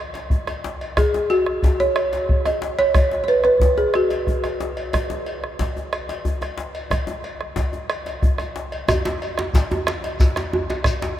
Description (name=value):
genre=west african traditional, West African drum ensemble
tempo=122 BPM (dotted quarters)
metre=12/8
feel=straight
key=unclear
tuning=A4 = 440 Hz
part: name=bombo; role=percussion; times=0.1-11.0 s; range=none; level=-23 LUFS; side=equal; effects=none
part: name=cowbell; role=percussion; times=0.1-11.0 s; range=none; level=-32 LUFS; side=left 2 dB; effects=none
part: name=djembe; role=percussion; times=0.2-11.2 s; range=none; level=-28 LUFS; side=left 2 dB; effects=none
part: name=balafon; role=melody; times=1.0-4.3 s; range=F#4 to D#5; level=-20 LUFS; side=right 1 dB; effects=none
part: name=djembe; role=percussion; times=8.9-11.2 s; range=none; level=-25 LUFS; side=right 2 dB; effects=none
part: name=shekere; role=percussion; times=8.9-11.1 s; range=none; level=-33 LUFS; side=left 1 dB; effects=none
room=wet cathedral reverb, RT60 6.5 s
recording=in a vast, echoing space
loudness=-19 LUFS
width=side -12 dB against mid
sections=0.0-8.9 A section; 8.9-11.2 B section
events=none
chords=none